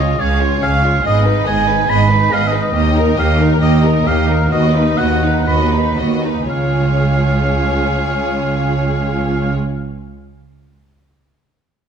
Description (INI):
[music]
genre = cinematic, heroic adventure film score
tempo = 111-142 BPM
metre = 4/4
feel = straight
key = Db mixolydian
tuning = A4 = 440 Hz
[part]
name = clear symphonic violin section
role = melody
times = 0.0-9.5 s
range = Bb4 to F5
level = -24 LUFS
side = left 2 dB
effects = none
[part]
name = warm oboe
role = second line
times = 0.0-9.5 s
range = Db5 to Cb6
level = -19 LUFS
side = right 2 dB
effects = none
[part]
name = warm symphonic violin section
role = second line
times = 0.0-9.5 s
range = Eb4 to Cb5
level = -23 LUFS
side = left 4 dB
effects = none
[part]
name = rich symphonic viola section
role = accompaniment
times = 0.0-9.5 s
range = Bb3 to F4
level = -25 LUFS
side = equal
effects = none
[part]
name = rich symphonic cello section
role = bass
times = 0.0-9.6 s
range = Db2 to Ab2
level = -19 LUFS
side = right 2 dB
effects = none
[part]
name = warm symphonic double bass section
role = bass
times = 0.0-9.5 s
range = Ab1 to Eb2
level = -18 LUFS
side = right 2 dB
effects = none
[sound]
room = wet recital hall reverb, RT60 1.6 s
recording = none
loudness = -13 LUFS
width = side -7 dB against mid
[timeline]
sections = 0.0-6.5 A section; 6.5-10.8 B section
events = slowing down 1.9-6.5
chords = 0.0 Db; 1.0 Abm; 2.7 Eb; 4.5 Cb/Eb; 6.5 Db